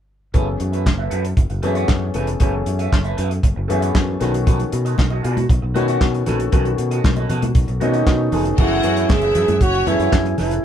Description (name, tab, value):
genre	disco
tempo	116 BPM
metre	4/4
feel	straight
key	F# dorian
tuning	A4 = 443 Hz
part	electric guitar at the edge of break-up	accompaniment	0.3-10.6 s	F#4 to F#5	-27 LUFS	right 4 dB	phaser
part	warm grand piano	accompaniment	0.3-10.6 s	D#3 to A4	-24 LUFS	left 5 dB	none
part	fingered electric bass	bass	0.3-10.6 s	E#1 to B2	-21 LUFS	equal	none
part	warm soul drum kit	drums	0.3-10.6 s	crash cymbal, handclaps, hi-hat, kick drum, snare drum	-18 LUFS	equal	none
part	congas	percussion	4.5-10.5 s	none	-27 LUFS	left 2 dB	none
part	mellow alto flute	melody	7.8-10.6 s	D#4 to G#4	-19 LUFS	right 3 dB	none
part	clear studio string section	second line	8.6-10.1 s	C#4 to F#5	-25 LUFS	left 1 dB	none
room	moderate small room reverb, RT60 0.5 s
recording	band playing live in one room, faint mains hum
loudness	-16 LUFS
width	side -9 dB against mid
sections	0.3-8.6 A section; 8.6-10.6 B section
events	none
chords	0.3 F#m11; 4.2 B7; 8.6 F#m11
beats	| 0.34 0.86 1.37 1.89 | 2.41 2.92 3.44 3.95 | 4.47 4.98 5.50 6.01 | 6.53 7.04 7.56 8.07 | 8.59 9.10 9.61 10.13 | 10.64